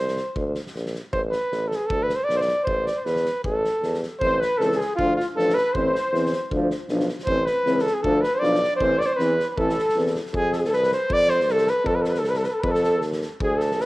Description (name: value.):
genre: balkan folk, Balkan brass band.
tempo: 157 BPM.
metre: 2/4.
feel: swing 55% on 16ths.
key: unclear.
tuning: A4 = 440 Hz.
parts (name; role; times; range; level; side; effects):
warm cornet; melody; 0.0-13.9 s; F4 to D5; -23 LUFS; equal; cassette tape.
clear tuba; bass; 0.0-13.9 s; A1 to F2; -26 LUFS; equal; none.
loose indie drum kit; percussion; 0.1-13.9 s; kick drum, snare drum; -34 LUFS; equal; cassette tape.
mellow trumpet; second line; 4.2-13.9 s; F4 to D5; -29 LUFS; left 2 dB; none.
dark euphonium; accompaniment; 4.2-10.1 s; C4 to D4; -29 LUFS; left 2 dB; none.
warm trombone; accompaniment; 4.2-10.1 s; E3 to F3; -30 LUFS; right 2 dB; none.
room: light reverb, studio reverb.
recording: home recording on cassette.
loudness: -20 LUFS.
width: side -20 dB against mid.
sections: 0.0-4.2 A section; 4.2-10.3 A section; 10.3-13.9 B section.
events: none.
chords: 0.4 Bb; 1.1 Asus2; 1.9 Bm; 2.7 A5; 4.2 Am; 5.0 Dm; 5.7 Am; 6.5 Dm; 7.3 Am; 8.0 Dm; 8.8 Am; 10.3 F.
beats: | 0.36 0.75 | 1.14 1.53 | 1.91 2.30 | 2.68 3.07 | 3.45 3.84 | 4.22 4.60 | 4.99 5.37 | 5.75 6.13 | 6.51 6.89 | 7.28 7.66 | 8.04 8.42 | 8.80 9.18 | 9.56 9.95 | 10.33 10.71 | 11.10 11.48 | 11.86 12.25 | 12.63 13.02 | 13.40 13.79.